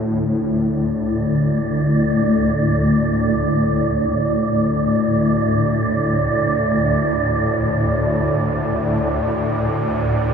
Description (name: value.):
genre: dark ambient drone.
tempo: free time.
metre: none.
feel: none.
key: unclear.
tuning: A4 = 440 Hz.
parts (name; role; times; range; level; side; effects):
swarming drone; drone; 0.0-10.3 s; D2 to A2; -17 LUFS; left 1 dB; built-in reverb.
wind-like tuned noise texture; texture; 0.8-10.3 s; D5; -22 LUFS; right 4 dB; built-in reverb.
room: wet cathedral reverb, RT60 6.3 s.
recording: faint mains hum.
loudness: -16 LUFS.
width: side -6 dB against mid.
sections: 0.2-10.3 A section.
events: none.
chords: 0.2 D5.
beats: free time.